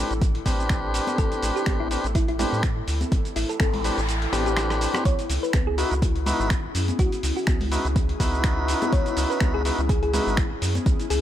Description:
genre	deep house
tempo	124 BPM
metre	4/4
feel	swing 55% on 16ths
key	unclear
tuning	A4 = 440 Hz
part	thumb-piano-like synth pluck	melody	0.0-11.2 s	D4 to C#5	-30 LUFS	left 1 dB	chorus, ping-pong delay
part	tonewheel organ	stabs	0.0-10.4 s	C4 to B4	-28 LUFS	equal	overdrive, sidechain pumping, ping-pong delay
part	rubbery square bass	bass	0.0-11.2 s	G#1 to A2	-27 LUFS	equal	sidechain pumping
part	granular cloud pad	texture	0.0-11.2 s	C#4 to A4	-33 LUFS	left 2 dB	built-in reverb, sidechain pumping
part	dusty soul sampler-style drum kit	drums	0.1-11.2 s	finger snaps, hi-hat, rim click, shaker	-31 LUFS	equal	overdrive
part	electronic kick drum	drums	0.2-11.0 s	none	-23 LUFS	equal	overdrive
part	congas	percussion	0.5-10.8 s	none	-35 LUFS	left 3 dB	sidechain pumping on perc
part	noise sweep	sound effects	3.4-5.1 s	none	-33 LUFS	equal	none
room	digital ambience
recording	none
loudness	-21 LUFS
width	side -11 dB against mid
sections	0.0-11.2 A section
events	noise sweep 3.4-5.1; kick drops out 4.1-5.1; drum fill 4.3-5.1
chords	0.0 Am11; 5.1 C#m11

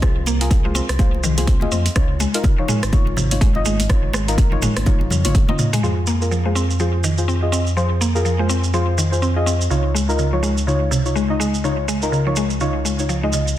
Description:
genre	afro house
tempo	124 BPM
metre	4/4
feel	swing 59% on 16ths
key	unclear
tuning	A4 = 440 Hz
part	mallet-like synth pluck	arpeggios	0.0-13.5 s	Ab2 to C4	-23 LUFS	equal	chorus, sidechain pumping, tape echo
part	deep mellow chord stab	stabs	0.0-13.3 s	Eb4 to Eb5	-24 LUFS	left 2 dB	chorus, sidechain pumping, tape echo
part	smooth synth bass	bass	0.0-13.6 s	Ab1 to F2	-21 LUFS	equal	sidechain pumping
part	afro-pop drum kit	drums	0.0-5.8 s	hi-hat, rim click, toms	-24 LUFS	right 1 dB	low-pass filter on hats, studio reverb, soft clipping on snare, low-pass filter on snare, low-pass filter on toms
part	electronic kick drum	drums	0.0-5.5 s	none	-16 LUFS	equal	studio reverb
part	shekere	percussion	0.0-13.6 s	none	-28 LUFS	right 4 dB	none
part	congas	percussion	0.3-5.8 s	none	-28 LUFS	left 3 dB	none
room	light reverb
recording	dense, heavily limited modern master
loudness	-16 LUFS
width	side -12 dB against mid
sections	0.0-5.8 A section; 5.8-13.6 B section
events	drum fill 4.9-5.8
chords	0.0 Fm; 2.0 Dbadd9; 5.8 Fm; 9.7 Dbadd9

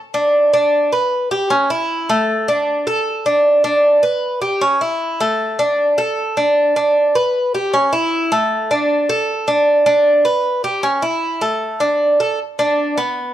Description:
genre	latin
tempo	154 BPM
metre	4/4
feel	straight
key	unclear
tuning	A4 = 440 Hz
part	Cuban tres	solo	0.1-13.3 s	A3 to B4	-14 LUFS	equal	none
room	moderate large studio reverb, RT60 1.0 s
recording	dark, warm production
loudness	-14 LUFS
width	side -12 dB against mid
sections	0.0-12.4 A section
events	none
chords	none

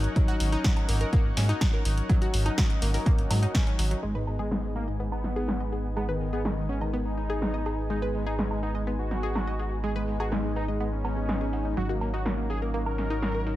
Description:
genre	melodic techno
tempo	124 BPM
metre	4/4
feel	straight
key	G# minor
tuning	A4 = 441 Hz
part	lush unison pad	sustained chords	0.0-13.6 s	D#4 to G#5	-39 LUFS	equal	chorus, sidechain pumping
part	brassy analog pad	stabs	0.0-13.6 s	F#3 to D#4	-36 LUFS	left 2 dB	chorus, sidechain pumping, tape echo
part	round analog bass	bass	0.0-13.6 s	G#1 to G#2	-29 LUFS	equal	sidechain pumping
part	punchy analog drum machine	drums	0.0-13.6 s	hi-hat, snare drum, woodblock	-33 LUFS	equal	low-pass filter on hats, low-pass filter on perc, low-pass filter on snare, low-pass filter on room
part	analog pluck	arpeggios	0.2-13.5 s	F#3 to D#5	-35 LUFS	equal	chorus, sidechain pumping, tape echo
part	electronic kick drum	drums	0.2-3.6 s	none	-24 LUFS	equal	none
part	wide unison lead	melody	4.0-13.6 s	G#2 to A#4	-34 LUFS	equal	sidechain pumping, tape echo
room	digital ambience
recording	none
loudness	-25 LUFS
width	side -15 dB against mid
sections	0.0-4.0 A section; 4.0-13.6 B section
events	filter sweep on analog synth pad 4.0-13.6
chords	0.0 D#m7/G#; 4.0 G#m; 11.8 D#m7/G#

